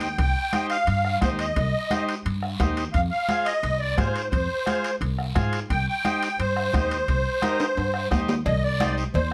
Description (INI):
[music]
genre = latin, cumbia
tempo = 174 BPM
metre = 4/4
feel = straight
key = C minor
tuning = A4 = 440 Hz
[part]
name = musette accordion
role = melody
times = 0.0-9.3 s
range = C5 to G5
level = -28 LUFS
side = equal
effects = none
[part]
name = combo organ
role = accompaniment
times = 0.0-9.0 s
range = Eb4 to C5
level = -32 LUFS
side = equal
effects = none
[part]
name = upright bass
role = bass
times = 0.0-9.3 s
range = C2 to Ab2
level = -29 LUFS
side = equal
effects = none
[part]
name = guiro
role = percussion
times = 0.0-9.3 s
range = none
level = -42 LUFS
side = equal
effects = none
[part]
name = timbales and cowbell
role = percussion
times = 0.0-9.3 s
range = none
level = -34 LUFS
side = equal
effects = none
[part]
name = bombo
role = percussion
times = 0.2-9.3 s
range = none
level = -30 LUFS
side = equal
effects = none
[part]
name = congas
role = percussion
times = 0.2-9.3 s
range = none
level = -34 LUFS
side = equal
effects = none
[sound]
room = moderate studio reverb, RT60 0.6 s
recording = none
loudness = -24 LUFS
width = mono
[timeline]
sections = 0.0-8.5 A section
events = drum fill 7.6-8.5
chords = 0.0 Cm; 2.9 Fm; 5.7 Cm